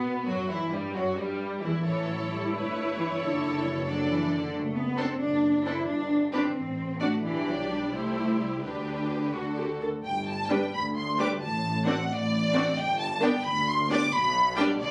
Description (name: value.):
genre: quick classical-period movement for string orchestra.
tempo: 89 BPM (dotted quarters).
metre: 6/8.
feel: straight.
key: D major, G major from 4.5 s.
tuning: A4 = 443 Hz.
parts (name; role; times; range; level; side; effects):
rich chamber violin section; melody; 0.0-14.9 s; G3 to D6; -33 LUFS; equal; none.
rich studio violin section; second line; 0.0-14.7 s; G3 to D5; -38 LUFS; equal; none.
rich studio viola section; accompaniment; 0.0-14.7 s; E3 to A4; -33 LUFS; equal; none.
rich chamber cello section; bass; 0.0-14.9 s; D2 to E4; -33 LUFS; equal; none.
rich chamber double bass section; bass; 0.0-14.9 s; F#1 to B2; -37 LUFS; equal; none.
room: light reverb.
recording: recorded on a phone in the room, club reverb.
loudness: -28 LUFS.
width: mono.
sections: 0.0-10.0 A section; 10.0-14.9 B section.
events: none.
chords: 0.5 Em; 1.9 A; 2.5 A7/G; 3.2 D/F#; 4.5 D7/F#; 5.9 G5; 6.6 D7(no3)/A; 7.2 G/B; 7.9 C; 8.6 G/D; 9.3 D; 10.0 G; 11.4 D7/A; 12.8 G; 14.1 G/B.